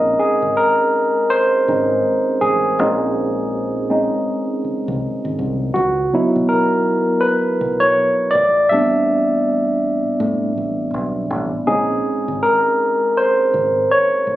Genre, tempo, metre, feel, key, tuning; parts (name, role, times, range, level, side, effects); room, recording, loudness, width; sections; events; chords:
R&B, neo-soul; 81 BPM; 4/4; swing 62% on 16ths; A4 = 440 Hz
barky tine electric piano; accompaniment; 0.0-14.4 s; Gb3 to E5; -15 LUFS; equal; overdrive, auto-pan
deep dub fingered electric bass; bass; 0.0-14.4 s; Ab1 to A2; -26 LUFS; equal
light reverb; recorded on a phone in the room, club reverb; -15 LUFS; side -14 dB against mid
0.0-14.4 A section
tine electric piano solo 0.0-14.4
0.0 Bbm11; 5.7 Dbm11; 8.3 Am11; 11.7 Bbm11